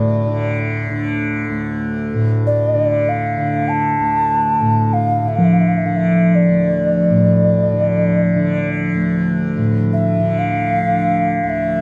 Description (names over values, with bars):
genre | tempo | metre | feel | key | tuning
world meditative, free-time meditation music | free time | none | none | D minor | A4 = 440 Hz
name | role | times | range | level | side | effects
hollow alto ocarina | melody | 0.0-11.8 s | D5 to A5 | -20 LUFS | equal | none
tanpura | drone | 0.0-11.8 s | D2 to D3 | -21 LUFS | equal | none
bronze singing bowl | texture | 5.4-11.8 s | F3 | -19 LUFS | equal | none
room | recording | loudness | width
wet booth ambience, RT60 0.3 s | dark, warm production | -17 LUFS | mono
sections
0.0-11.8 A section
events
none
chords
none